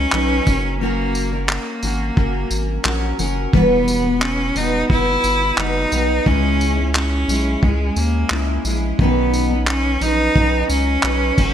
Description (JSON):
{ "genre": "acoustic pop", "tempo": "88 BPM", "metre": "4/4", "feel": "straight", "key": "B major", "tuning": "A4 = 439 Hz", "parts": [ { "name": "clear cello", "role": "melody", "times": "0.0-11.5 s", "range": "G#3 to E4", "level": "-21 LUFS", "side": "equal", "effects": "none" }, { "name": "fingerpicked steel-string acoustic guitar", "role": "accompaniment", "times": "0.0-11.5 s", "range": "B2 to B4", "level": "-22 LUFS", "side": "equal", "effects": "double-tracked left and right" }, { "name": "round analog bass", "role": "bass", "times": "0.0-11.5 s", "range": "E1 to D#2", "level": "-21 LUFS", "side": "equal", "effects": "none" }, { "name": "cloth-damped thuddy drum kit", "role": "drums", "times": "0.1-11.5 s", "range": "crash cymbal, handclaps, kick drum, tambourine", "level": "-21 LUFS", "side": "equal", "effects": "none" } ], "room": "light reverb, small room ambience", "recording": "bright 1980s-style digital production", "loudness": "-16 LUFS", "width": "side -9 dB against mid", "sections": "0.0-11.5 A section", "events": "none", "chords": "0.5 F#; 3.5 Emadd9; 6.3 C#m; 9.0 Badd9", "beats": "0.13 | 0.81 1.49 2.17 2.85 | 3.54 4.22 4.90 5.58 | 6.26 6.95 7.63 8.31 | 8.99 9.67 10.36 11.04" }